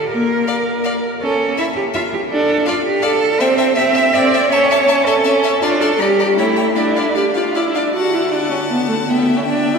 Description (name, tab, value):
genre	quick classical-period movement for string quartet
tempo	162 BPM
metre	3/4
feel	rubato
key	D minor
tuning	A4 = 443 Hz
part	rich cello	bass	0.0-9.8 s	D3 to E5	-17 LUFS	right 2 dB	none
part	rich viola	accompaniment	0.1-9.8 s	G3 to G4	-17 LUFS	equal	none
part	clear violin	melody	0.5-9.8 s	E5 to Bb5	-26 LUFS	left 5 dB	none
part	clear violin	second line	0.5-9.8 s	C#5 to F#5	-24 LUFS	left 3 dB	none
room	wet cathedral reverb, RT60 5.2 s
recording	recorded in a church or concert hall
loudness	-13 LUFS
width	side -5 dB against mid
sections	0.0-7.9 A section; 7.9-9.8 B section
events	none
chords	0.1 N.C.; 1.2 A/C#; 2.3 D5; 3.4 C; 4.5 A/C#; 5.6 Dm; 6.0 G5; 6.4 A7; 6.8 Dm; 7.9 D; 9.1 Em7/D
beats	| 0.12 0.49 0.85 | 1.22 1.59 1.95 | 2.31 2.68 3.04 | 3.41 3.78 4.14 | 4.51 4.87 5.24 | 5.62 5.99 6.37 | 6.76 7.16 7.55 | 7.95 8.32 8.70 | 9.08 9.45